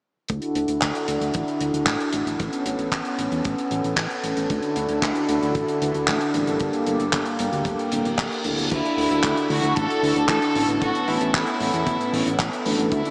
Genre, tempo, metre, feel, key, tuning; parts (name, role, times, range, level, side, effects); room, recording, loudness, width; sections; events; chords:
italo disco; 114 BPM; 4/4; straight; A4 = 440 Hz
warm analog pad; sustained chords; 0.3-13.1 s; D3 to A4; -27 LUFS; equal; chorus
fat analog bass; bass; 0.3-13.0 s; D1 to E2; -32 LUFS; equal
damped 70s drum kit; drums; 0.3-13.1 s; crash cymbal, handclaps, hi-hat; -30 LUFS; equal
kick drum; drums; 0.3-13.0 s; -32 LUFS; equal
mellow synth brass; stabs; 4.8-13.1 s; G2 to B4; -30 LUFS; equal; chorus, tape echo
reverse cymbal; sound effects; 7.9-8.7 s; -37 LUFS; equal
rich chamber violin section; melody; 8.7-13.1 s; E4 to A4; -27 LUFS; equal; vintage 12-bit sampler grit, tape echo
wet huge ambient reverb, RT60 8.0 s; dreamy mix soaked in reverb, small speaker sound; -23 LUFS; mono
0.3-8.7 A section; 8.7-13.1 B section
filter sweep on analog synth bass 0.3-8.7; reverse cymbal 7.9-8.7
0.3 Dadd9; 2.4 Aadd9; 4.5 Dadd9; 6.6 Gmadd9; 8.7 Aadd9